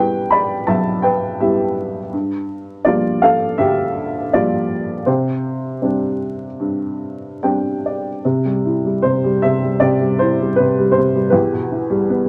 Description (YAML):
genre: classical, lyrical solo piano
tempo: 71-83 BPM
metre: 4/4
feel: rubato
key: C major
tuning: A4 = 440 Hz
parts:
  - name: dark upright piano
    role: solo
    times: 0.0-12.3 s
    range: B1 to B5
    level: -18 LUFS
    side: equal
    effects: none
room: moderate small room reverb, RT60 0.5 s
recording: vinyl crackle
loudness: -18 LUFS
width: mono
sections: 0.0-8.2 A section; 8.2-12.3 A section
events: upright piano fill 7.0-8.2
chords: 0.0 Em; 2.1 Gm7; 5.1 Csus2; 8.2 C; 11.3 Em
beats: 0.66 1.40 | 2.13 2.86 3.60 4.33 | 5.07 5.83 6.60 7.42 | 8.24 9.03 9.81 10.57 | 11.32 12.07